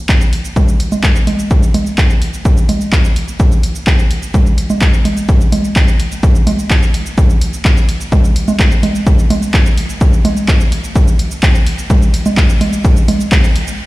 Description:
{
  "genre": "melodic techno",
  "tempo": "127 BPM",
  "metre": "4/4",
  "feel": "straight",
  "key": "none",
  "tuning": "none",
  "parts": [
    { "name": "electronic kick drum", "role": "drums", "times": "0.1-13.4 s", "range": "none", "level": "-11 LUFS", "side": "equal", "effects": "overdrive" },
    { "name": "punchy analog drum machine", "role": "drums", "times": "0.1-13.8 s", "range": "congas, handclaps, hi-hat, shaker", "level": "-17 LUFS", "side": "right 1 dB", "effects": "overdrive" }
  ],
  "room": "light reverb, digital ambience",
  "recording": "played on a big sound system in a bare room, stone room reverb",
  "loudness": "-10 LUFS",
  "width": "side -19 dB against mid",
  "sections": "0.0-13.9 A section",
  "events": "build-up 0.0-13.9",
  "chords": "none"
}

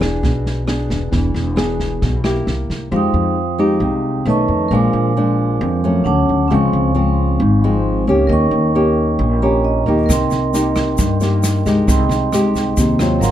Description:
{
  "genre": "bossa nova",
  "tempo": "134 BPM",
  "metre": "4/4",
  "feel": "straight",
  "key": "F minor",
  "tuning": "A4 = 440 Hz",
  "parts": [
    { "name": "nylon-string guitar", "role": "accompaniment", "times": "0.0-13.3 s", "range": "F2 to G#4", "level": "-17 LUFS", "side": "left 2 dB", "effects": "none" },
    { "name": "upright bass", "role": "bass", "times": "0.0-13.3 s", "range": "E1 to G2", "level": "-19 LUFS", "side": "equal", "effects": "none" },
    { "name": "open jazz drum kit", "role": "drums", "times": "0.0-2.8, 10.1-13.3 s", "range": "kick drum, rim click, snare drum", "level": "-22 LUFS", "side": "equal", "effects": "none" },
    { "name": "vibraphone with medium hard mallets", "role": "accompaniment", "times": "2.9-13.3 s", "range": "C4 to Eb6", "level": "-21 LUFS", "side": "right 4 dB", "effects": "none" },
    { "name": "tube shaker", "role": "percussion", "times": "10.1-13.3 s", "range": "none", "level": "-29 LUFS", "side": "left 5 dB", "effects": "none" }
  ],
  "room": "light reverb",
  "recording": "dark, warm production",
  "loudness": "-14 LUFS",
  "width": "side -11 dB against mid",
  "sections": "0.0-2.9 A section; 2.9-13.3 B section",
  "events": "vibraphone fill 9.2-10.1, 13.0-13.3",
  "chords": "0.0 E7; 2.5 C7; 2.9 Fm9; 4.3 B9; 4.7 Bb7; 6.1 Dmaj7; 6.5 Dbmaj7; 8.3 Eb7; 10.1 Cm7; 11.9 Abmaj7/C"
}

